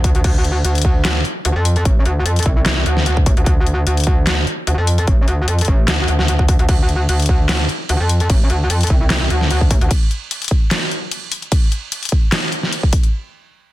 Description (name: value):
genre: heavy wobble dubstep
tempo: 149 BPM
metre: 4/4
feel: swing 53% on 16ths, half-time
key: D minor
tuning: A4 = 440 Hz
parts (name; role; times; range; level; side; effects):
- metallic wobble bass; bass; 0.0-9.9 s; A1 to F2; -16 LUFS; equal; chorus, overdrive
- dubstep drum kit; drums; 0.0-13.1 s; crash cymbal, handclaps, hi-hat, snare drum; -20 LUFS; equal; none
- electronic kick drum; drums; 0.0-13.0 s; none; -14 LUFS; equal; none
room: little or no reverb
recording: dense, heavily limited modern master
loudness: -14 LUFS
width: side -16 dB against mid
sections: 0.0-13.1 A section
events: drop 0.0-13.1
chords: none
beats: | 0.24 0.65 1.05 1.45 | 1.85 2.26 2.66 3.06 | 3.46 3.87 4.27 4.67 | 5.08 5.48 5.88 6.28 | 6.69 7.09 7.49 7.89 | 8.30 8.70 9.10 9.50 | 9.91 10.31 10.71 11.12 | 11.52 11.92 12.32 12.73